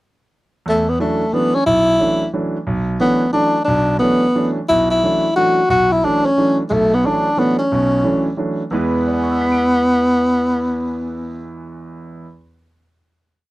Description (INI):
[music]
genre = jazz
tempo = 178 BPM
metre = 3/4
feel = swing 64% on 8ths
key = E mixolydian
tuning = A4 = 440 Hz
[part]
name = mellow tenor saxophone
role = melody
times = 0.7-11.5 s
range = G#3 to F#4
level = -15 LUFS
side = equal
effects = none
[part]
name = clear concert grand piano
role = accompaniment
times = 0.7-12.4 s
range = B1 to D7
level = -21 LUFS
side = right 2 dB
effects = none
[sound]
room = little or no reverb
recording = dry, close 1970s-style studio recording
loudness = -14 LUFS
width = side -18 dB against mid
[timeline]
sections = 0.6-8.7 A section; 8.7-10.7 final chord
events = none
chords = 0.6 E13sus4; 8.7 E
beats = | 0.64 0.98 1.31 | 1.65 1.99 2.32 | 2.66 2.99 3.33 | 3.67 4.00 4.34 | 4.67 5.01 5.35 | 5.68 6.02 6.36 | 6.70 7.03 7.37 | 7.71 8.04 8.38 | 8.72 9.05 9.39 | 9.73 10.06 10.40